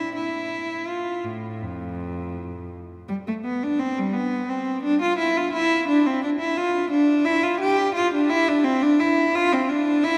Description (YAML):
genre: classical, baroque-style suite movement for unaccompanied cello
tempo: 80-87 BPM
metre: 4/4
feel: rubato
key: F major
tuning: A4 = 440 Hz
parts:
  - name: rich cello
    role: solo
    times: 0.0-10.2 s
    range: F2 to G4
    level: -23 LUFS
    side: equal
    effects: none
room: wet cathedral reverb, RT60 5.1 s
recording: recorded in a church or concert hall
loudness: -23 LUFS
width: mono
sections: 0.0-3.1 A section; 3.1-10.2 A section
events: none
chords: none